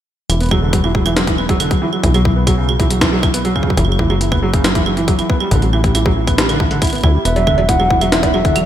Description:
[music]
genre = IDM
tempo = 138 BPM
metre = 4/4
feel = straight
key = unclear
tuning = A4 = 440 Hz
[part]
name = felt-muted upright piano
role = arpeggios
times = 0.3-8.6 s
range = C#3 to E4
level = -18 LUFS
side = right 2 dB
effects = low-pass filter, ping-pong delay
[part]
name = deep acid bass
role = bass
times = 0.3-8.7 s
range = E1 to D2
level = -18 LUFS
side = left 1 dB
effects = tube saturation
[part]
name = jungle sampler-style drum kit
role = drums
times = 0.3-8.6 s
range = claves, cowbell, hi-hat, snare drum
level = -20 LUFS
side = equal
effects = small room reverb, gated reverb
[part]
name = electronic kick drum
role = drums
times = 0.5-8.5 s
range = none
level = -18 LUFS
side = left 1 dB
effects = overdrive, small room reverb
[part]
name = warbly nostalgic lead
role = melody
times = 7.3-8.7 s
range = E5 to F#5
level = -16 LUFS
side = right 1 dB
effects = chorus, cassette tape
[part]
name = glassy FM pad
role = sustained chords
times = 8.1-8.7 s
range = E3 to F#5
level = -24 LUFS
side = left 1 dB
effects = ensemble chorus, built-in reverb, phaser
[sound]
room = moderate lush hall reverb, RT60 1.9 s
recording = bright 1980s-style digital production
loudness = -12 LUFS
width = side -11 dB against mid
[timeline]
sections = 0.3-8.7 A section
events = none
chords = 0.3 Esus2; 1.8 Bsus4; 3.8 F#7(no3); 5.3 A7sus4; 7.3 E9sus4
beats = | 0.30 0.73 1.17 1.60 | 2.04 2.47 2.90 3.34 | 3.77 4.21 4.64 5.08 | 5.51 5.95 6.38 6.82 | 7.25 7.69 8.12 8.56

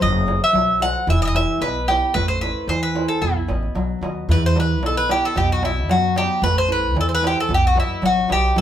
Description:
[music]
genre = greek folk, Greek bouzouki band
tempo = 112 BPM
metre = 2/4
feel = straight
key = E harmonic minor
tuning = A4 = 437 Hz
[part]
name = Greek bouzouki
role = melody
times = 0.0-8.6 s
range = E4 to F#5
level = -20 LUFS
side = equal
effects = none
[part]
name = nylon-string guitar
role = accompaniment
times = 0.0-8.6 s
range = B2 to D#5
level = -24 LUFS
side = equal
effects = none
[part]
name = upright bass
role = bass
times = 0.0-8.6 s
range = E1 to F#2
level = -23 LUFS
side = equal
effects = none
[part]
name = darbuka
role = percussion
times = 0.0-8.6 s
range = none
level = -26 LUFS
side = right 2 dB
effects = none
[sound]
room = moderate studio reverb, RT60 0.6 s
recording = band playing live in one room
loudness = -17 LUFS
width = side -10 dB against mid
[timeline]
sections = 0.0-4.3 A section; 4.3-8.6 B section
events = none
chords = 0.0 F#dim; 1.1 Em; 2.1 Am; 3.2 B; 4.3 Em; 5.4 B; 6.4 Am; 7.5 B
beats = | 0.01 0.54 | 1.08 1.61 | 2.15 2.68 | 3.22 3.75 | 4.29 4.82 | 5.36 5.89 | 6.43 6.96 | 7.50 8.03 | 8.57

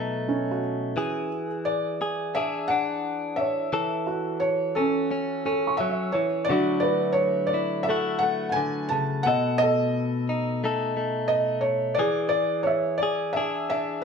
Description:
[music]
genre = folk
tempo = 87 BPM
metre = 4/4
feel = straight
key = unclear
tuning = A4 = 439 Hz
[part]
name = felt-muted upright piano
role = melody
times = 0.0-14.0 s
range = C#4 to A5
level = -25 LUFS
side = equal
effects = none
[part]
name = direct-recorded clean electric guitar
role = accompaniment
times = 0.0-14.0 s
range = B2 to A4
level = -27 LUFS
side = left 2 dB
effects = none
[part]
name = felt-muted upright piano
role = arpeggios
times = 0.3-14.0 s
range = C#4 to C#6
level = -30 LUFS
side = right 4 dB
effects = none
[sound]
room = wet studio reverb, RT60 0.8 s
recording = band playing live in one room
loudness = -23 LUFS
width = side -6 dB against mid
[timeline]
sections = 0.0-14.0 A section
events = none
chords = 0.0 B7; 1.0 E7; 3.7 A/E; 6.5 Dadd9; 9.2 B7; 12.0 E7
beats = 0.28 | 0.97 1.66 2.35 3.04 | 3.73 4.42 5.11 5.80 | 6.49 7.18 7.87 8.56 | 9.25 9.94 10.62 11.31 | 11.99 12.68 13.37

